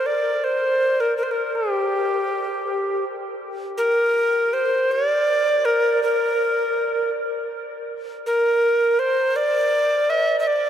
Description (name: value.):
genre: persian.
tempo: 54 BPM (dotted quarters).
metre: 6/8.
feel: straight.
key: unclear.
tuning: A4 = 440 Hz.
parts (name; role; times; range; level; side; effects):
breathy bright alto recorder; solo; 0.0-10.7 s; G4 to E5-48c; -19 LUFS; equal; none.
room: wet huge ambient reverb, RT60 8.5 s.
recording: in a vast, echoing space.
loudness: -18 LUFS.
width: side -9 dB against mid.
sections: 0.0-3.8 A section; 3.8-10.7 B section.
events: none.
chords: none.